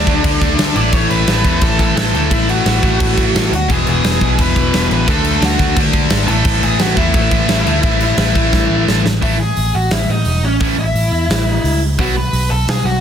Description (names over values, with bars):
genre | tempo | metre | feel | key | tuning
punk rock | 174 BPM | 4/4 | straight | unclear | A4 = 443 Hz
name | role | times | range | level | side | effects
lead guitar through a small cranked amp | melody | 0.0-13.0 s | C#4 to D6 | -20 LUFS | equal | overdrive, ping-pong delay
distorted electric guitar | riff | 0.0-12.1 s | E2 to D4 | -20 LUFS | left 15 dB | overdrive
overdriven electric guitar | riff | 0.0-12.1 s | E2 to D4 | -20 LUFS | right 17 dB | none
picked electric bass | bass | 0.0-13.0 s | E1 to E2 | -17 LUFS | equal | none
big rock drum kit | drums | 0.1-12.8 s | crash cymbal, hi-hat, kick drum, snare drum | -17 LUFS | equal | none
room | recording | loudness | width
little or no reverb | dense, heavily limited modern master | -12 LUFS | side -8 dB against mid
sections
0.0-9.2 A section; 9.2-13.0 B section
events
drum fill 8.5-9.2; half time 9.2-13.0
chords
0.0 D5; 0.8 A5; 3.7 E; 5.1 D; 6.3 A5; 9.2 A; 12.0 B5